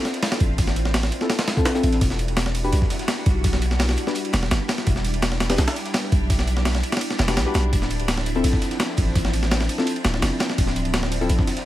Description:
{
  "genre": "drum and bass, jungle",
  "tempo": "168 BPM",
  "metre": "4/4",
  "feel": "straight",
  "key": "E phrygian",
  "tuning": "A4 = 440 Hz",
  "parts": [
    { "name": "soft string machine", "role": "sustained chords", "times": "0.0-11.7 s", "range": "F3 to G4", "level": "-28 LUFS", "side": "equal", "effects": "ensemble chorus" },
    { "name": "breakbeat sampler-style drum kit", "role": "drums", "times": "0.0-11.7 s", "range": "kick drum, ride cymbal, snare drum", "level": "-23 LUFS", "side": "equal", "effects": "none" },
    { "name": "crunchy breakbeat drum kit", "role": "drums", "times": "0.0-11.7 s", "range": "hi-hat, snare drum", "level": "-36 LUFS", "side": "left 2 dB", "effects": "high-pass filter on hats, high-pass filter on snare, high-pass filter on room" },
    { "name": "long sustained 808-style bass", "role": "bass", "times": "0.4-11.4 s", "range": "D1 to B1", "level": "-23 LUFS", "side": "equal", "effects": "tube saturation" },
    { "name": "deep mellow chord stab", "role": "stabs", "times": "1.2-11.3 s", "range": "C4 to B4", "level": "-28 LUFS", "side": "left 3 dB", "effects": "wide subtle chorus, dub echo" }
  ],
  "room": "light reverb, small room ambience",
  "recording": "vinyl crackle",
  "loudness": "-19 LUFS",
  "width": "side -14 dB against mid",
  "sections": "0.0-11.7 A section",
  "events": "none",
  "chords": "0.0 Dm9; 2.0 Em9; 7.7 Dm9",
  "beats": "0.23 | 0.58 0.94 1.30 1.66 | 2.01 2.37 2.73 3.08 | 3.44 3.80 4.16 4.51 | 4.87 5.23 5.58 5.94 | 6.30 6.66 7.01 7.37 | 7.73 8.09 8.44 8.80 | 9.16 9.51 9.87 10.23 | 10.59 10.94 11.30"
}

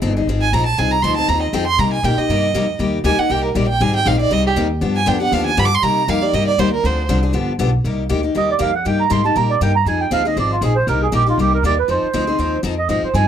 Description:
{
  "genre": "acoustic string swing (jazz manouche)",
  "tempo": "238 BPM",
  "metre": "4/4",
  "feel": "swing 55% on 8ths",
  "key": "C minor",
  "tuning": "A4 = 440 Hz",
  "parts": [
    { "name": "picked steel-string acoustic guitar", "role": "accompaniment", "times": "0.0-13.2 s", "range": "C3 to Ab4", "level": "-20 LUFS", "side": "left 5 dB", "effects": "none" },
    { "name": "upright bass", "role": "bass", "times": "0.0-13.3 s", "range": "G1 to C3", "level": "-20 LUFS", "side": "equal", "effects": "none" },
    { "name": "warm violin", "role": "second line", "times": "0.4-7.1 s", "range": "G4 to D6", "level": "-18 LUFS", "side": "right 5 dB", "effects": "none" },
    { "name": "mellow accordion", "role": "melody", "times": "8.4-13.3 s", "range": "F4 to C6", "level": "-18 LUFS", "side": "right 6 dB", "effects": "none" }
  ],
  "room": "small room reverb",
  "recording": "dry, close 1970s-style studio recording",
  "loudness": "-15 LUFS",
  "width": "side -9 dB against mid",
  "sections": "0.0-7.8 A section; 7.8-13.3 A section",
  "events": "violin solo 0.0-7.8; accordion solo 7.8-13.3",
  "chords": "0.0 Fm7; 1.8 Cm7; 3.8 Abmaj7; 4.8 G7; 5.8 Cm7; 6.8 Dm7b5; 7.3 G7; 7.8 Cm7; 9.9 Fm7; 10.9 Cm7; 11.9 Fm7",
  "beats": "0.02 0.28 0.53 | 0.78 1.03 1.29 1.54 | 1.79 2.04 2.30 2.55 | 2.80 3.05 3.31 3.56 | 3.81 4.06 4.32 4.57 | 4.82 5.07 5.33 5.58 | 5.83 6.08 6.33 6.59 | 6.84 7.09 7.34 7.60 | 7.85 8.10 8.35 8.61 | 8.86 9.11 9.36 9.61 | 9.87 10.12 10.37 10.62 | 10.88 11.13 11.38 11.63 | 11.88 12.13 12.39 12.64 | 12.89 13.14"
}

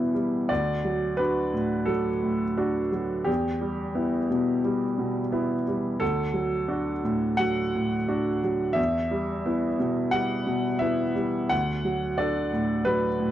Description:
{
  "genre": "neoclassical minimalist piano",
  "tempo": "88 BPM",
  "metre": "4/4",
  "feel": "rubato",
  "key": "D major",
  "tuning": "A4 = 442 Hz",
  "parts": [
    { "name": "clear baby grand piano", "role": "solo", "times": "0.0-13.3 s", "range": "D2 to F#5", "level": "-24 LUFS", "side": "equal", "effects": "none" }
  ],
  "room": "light reverb",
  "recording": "dry, close 1970s-style studio recording",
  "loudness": "-24 LUFS",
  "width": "side -12 dB against mid",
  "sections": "0.0-13.3 A section",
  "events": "none",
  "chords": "0.0 Em; 0.5 D; 3.3 Em; 6.0 D; 8.8 Em; 11.5 D",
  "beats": "| 0.50 1.20 1.90 2.59 | 3.28 3.97 4.65 5.33 | 6.01 6.70 7.41 8.10 | 8.78 9.46 10.14 10.82 | 11.51 12.20 12.88"
}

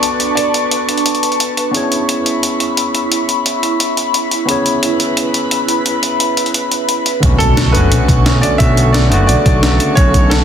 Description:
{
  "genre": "liquid drum and bass",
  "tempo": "175 BPM",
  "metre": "4/4",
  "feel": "straight",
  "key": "B dorian",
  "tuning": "A4 = 440 Hz",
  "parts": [
    { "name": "clear baby grand piano", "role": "melody", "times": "0.0-1.5, 7.4-10.4 s", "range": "A4 to E5", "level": "-19 LUFS", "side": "right 2 dB", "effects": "tape echo" },
    { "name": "overdriven tine electric piano", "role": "accompaniment", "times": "0.0-10.4 s", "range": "C#3 to D5", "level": "-18 LUFS", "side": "equal", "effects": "low-pass filter, ping-pong delay" },
    { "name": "airy breathy pad", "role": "sustained chords", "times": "0.0-10.4 s", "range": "D4 to C#6", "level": "-18 LUFS", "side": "equal", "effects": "chorus, phaser, sidechain pumping" },
    { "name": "breakbeat sampler-style drum kit", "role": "drums", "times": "0.0-10.4 s", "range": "hi-hat, snare drum", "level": "-18 LUFS", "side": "equal", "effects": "studio reverb" },
    { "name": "smooth synth bass", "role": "bass", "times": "7.2-10.4 s", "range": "F#1 to B1", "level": "-13 LUFS", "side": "equal", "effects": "none" },
    { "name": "electronic kick drum", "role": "drums", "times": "7.2-10.2 s", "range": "none", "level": "-13 LUFS", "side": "equal", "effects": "studio reverb" },
    { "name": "impact", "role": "sound effects", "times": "7.2-8.6 s", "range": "none", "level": "-20 LUFS", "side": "equal", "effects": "none" }
  ],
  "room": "light reverb",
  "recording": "dense, heavily limited modern master",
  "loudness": "-11 LUFS",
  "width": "side -8 dB against mid",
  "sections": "0.0-7.2 A section; 7.2-10.4 B section",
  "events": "filter sweep on tine electric piano 0.0-7.2; drop 7.2-10.4; impact 7.2-8.6",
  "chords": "0.0 Bm9; 1.7 C#m7; 7.2 Bm9",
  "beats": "0.03 | 0.37 0.71 1.06 1.40 | 1.74 2.09 2.43 2.77 | 3.11 3.46 3.80 4.14 | 4.49 4.83 5.17 5.51 | 5.86 6.20 6.54 6.89 | 7.23 7.57 7.91 8.26 | 8.60 8.94 9.29 9.63 | 9.97 10.31"
}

